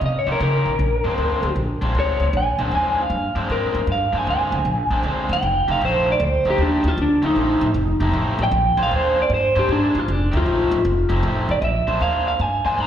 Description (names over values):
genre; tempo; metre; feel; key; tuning
blues; 155 BPM; 4/4; swing 66% on 8ths; Bb mixolydian; A4 = 440 Hz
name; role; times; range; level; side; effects
electric guitar through a small old amp; melody; 0.0-12.9 s; D4 to Bb5; -20 LUFS; equal; slapback echo
upright bass; bass; 0.0-12.9 s; F1 to Db3; -22 LUFS; equal; none
raw garage guitar; riff; 0.3-12.9 s; Bb2 to C5; -25 LUFS; left 1 dB; overdrive, slapback echo
room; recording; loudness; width
light reverb, small room ambience; live gig heard through the venue's PA, recital hall reverb; -17 LUFS; side -10 dB against mid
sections
0.0-11.6 A section; 11.6-12.9 B section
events
clean electric guitar solo 0.0-11.6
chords
0.0 Eb9; 0.8 Bb9; 5.4 F9; 8.5 Bb9; 10.1 F9; 11.6 Bb9